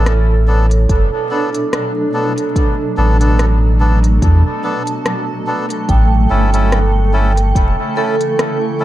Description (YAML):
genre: ambient dub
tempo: 72 BPM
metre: 4/4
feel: swing 56% on 16ths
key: B minor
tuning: A4 = 441 Hz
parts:
  - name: granular cloud pad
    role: sustained chords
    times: 0.0-8.8 s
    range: B2 to A4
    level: -22 LUFS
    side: equal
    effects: built-in reverb, vintage 12-bit sampler grit
  - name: vibraphone with medium hard mallets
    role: arpeggios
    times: 0.0-8.8 s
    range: D4 to A5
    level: -20 LUFS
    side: right 4 dB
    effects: dub echo
  - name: melodica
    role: stabs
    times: 0.0-8.8 s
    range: B3 to A4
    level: -21 LUFS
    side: left 1 dB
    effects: dub echo
  - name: warm sub bass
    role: bass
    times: 0.0-7.8 s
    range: E1 to E2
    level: -12 LUFS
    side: equal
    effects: none
  - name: organic electronic drum kit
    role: drums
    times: 0.1-8.6 s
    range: hi-hat, rim click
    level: -22 LUFS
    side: left 1 dB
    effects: dub echo
  - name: electronic kick drum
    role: drums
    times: 0.9-7.7 s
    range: none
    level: -15 LUFS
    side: equal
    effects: none
room: light reverb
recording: echo-heavy mix, vinyl crackle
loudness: -12 LUFS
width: side -14 dB against mid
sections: 0.0-8.8 A section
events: none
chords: 0.0 Bm7; 5.9 A